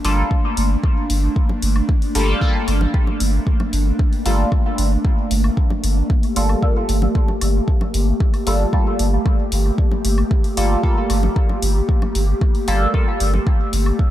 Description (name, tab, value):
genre	dub techno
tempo	114 BPM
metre	4/4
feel	straight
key	G minor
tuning	A4 = 440 Hz
part	airy breathy pad	sustained chords	0.0-14.1 s	A3 to G4	-24 LUFS	equal	chorus, sidechain pumping
part	resonant sweep polysynth	stabs	0.0-13.1 s	G3 to A4	-25 LUFS	equal	chorus, phaser, sidechain pumping, dub echo
part	pure sine sub bass	bass	0.0-13.9 s	G1	-18 LUFS	equal	sidechain pumping
part	electronic hi-hat	drums	0.0-13.8 s	none	-28 LUFS	left 2 dB	none
part	electronic kick drum	drums	0.3-14.1 s	none	-17 LUFS	equal	none
part	woodblock and congas	percussion	0.8-14.0 s	none	-33 LUFS	left 1 dB	sidechain pumping on perc, dub echo
room	little or no reverb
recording	none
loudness	-16 LUFS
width	side -13 dB against mid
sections	0.0-14.1 A section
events	none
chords	0.0 Gm9